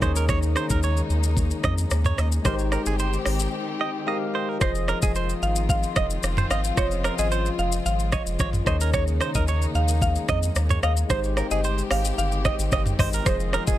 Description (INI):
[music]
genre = afrobeats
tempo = 111 BPM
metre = 4/4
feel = straight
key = F minor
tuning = A4 = 440 Hz
[part]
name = barky tine electric piano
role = accompaniment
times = 0.0-13.8 s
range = Eb3 to G5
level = -31 LUFS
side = left 4 dB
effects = analog chorus
[part]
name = rich studio string section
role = sustained chords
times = 0.0-13.8 s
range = Db3 to G4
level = -34 LUFS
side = left 1 dB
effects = none
[part]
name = direct-recorded clean electric guitar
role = riff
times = 0.0-13.8 s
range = Ab4 to Eb5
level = -30 LUFS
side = right 8 dB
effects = digital delay
[part]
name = round analog bass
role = bass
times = 0.0-13.8 s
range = F1 to F2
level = -25 LUFS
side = equal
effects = none
[part]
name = afro-pop drum kit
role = drums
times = 0.0-13.8 s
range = hi-hat, kick drum, rim click, shaker, toms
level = -25 LUFS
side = equal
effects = none
[part]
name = mallet-like synth pluck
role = melody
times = 4.6-13.8 s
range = C5 to F5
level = -29 LUFS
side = right 1 dB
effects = chorus, digital delay
[sound]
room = little or no reverb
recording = none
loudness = -21 LUFS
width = side -13 dB against mid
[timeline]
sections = 0.0-4.6 A section; 4.6-13.8 B section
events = break 3.5-4.6; tine electric piano fill 3.5-4.6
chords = 0.0 Eb7sus4; 2.5 Abmaj7; 4.6 Fm7; 6.8 Dbmaj7/F; 8.7 Eb7sus4; 11.1 Abmaj7; 13.3 Fm7